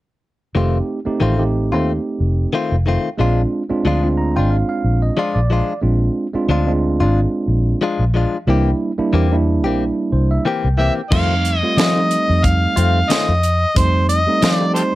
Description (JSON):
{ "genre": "straight-eighth soul blues", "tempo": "91 BPM", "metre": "4/4", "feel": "swing 56% on 16ths", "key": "F mixolydian", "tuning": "A4 = 440 Hz", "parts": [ { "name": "tine electric piano", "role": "accompaniment", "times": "0.5-14.9 s", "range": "G3 to Bb5", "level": "-20 LUFS", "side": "right 3 dB", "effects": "none" }, { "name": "direct-recorded clean electric guitar", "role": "stabs", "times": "0.6-14.6 s", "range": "Eb3 to G4", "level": "-20 LUFS", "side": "left 4 dB", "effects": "none" }, { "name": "vintage muted fingered electric bass", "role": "bass", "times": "0.6-14.8 s", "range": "F1 to F3", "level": "-17 LUFS", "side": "equal", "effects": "none" }, { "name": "overdriven harmonica", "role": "melody", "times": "10.8-14.9 s", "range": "G4 to F5", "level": "-18 LUFS", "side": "equal", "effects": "none" }, { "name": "tight funk drum kit", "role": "drums", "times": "11.1-14.9 s", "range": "crash cymbal, hi-hat, kick drum, snare drum", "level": "-20 LUFS", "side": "equal", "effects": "none" } ], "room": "light reverb", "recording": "none", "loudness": "-15 LUFS", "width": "side -16 dB against mid", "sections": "0.6-11.1 A section; 11.1-14.9 B section", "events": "tine electric piano fill 3.9-5.8, 9.8-11.1", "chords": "0.6 F7; 3.2 Bb7; 8.5 C7; 11.1 F7" }